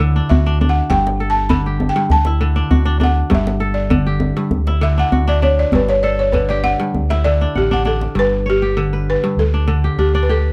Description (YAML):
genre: west african traditional, West African string and xylophone music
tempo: 99 BPM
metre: 4/4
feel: straight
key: G lydian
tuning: A4 = 440 Hz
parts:
  - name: kora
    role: arpeggios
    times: 0.0-10.5 s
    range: G2 to F#5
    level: -23 LUFS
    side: equal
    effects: none
  - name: fingered electric bass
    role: bass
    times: 0.0-10.5 s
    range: G1 to D2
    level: -20 LUFS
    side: equal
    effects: none
  - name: djembe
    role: percussion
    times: 0.2-8.1 s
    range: none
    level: -21 LUFS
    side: equal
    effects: none
  - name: balafon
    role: melody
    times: 0.3-10.5 s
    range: G4 to B5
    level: -21 LUFS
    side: equal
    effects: plate reverb
room: light reverb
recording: dark, warm production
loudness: -16 LUFS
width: mono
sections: 0.0-8.2 A section; 8.2-10.5 B section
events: balafon solo 0.0-8.2; drum fill 7.5-8.2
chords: 0.0 D; 0.9 G5; 2.1 D; 3.3 G5; 4.5 D; 5.7 G5; 6.9 D; 8.2 G; 9.4 D5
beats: 0.30 | 0.90 1.50 2.11 2.71 | 3.31 3.92 4.52 5.13 | 5.73 6.34 6.94 7.55 | 8.16 8.76 9.37 9.98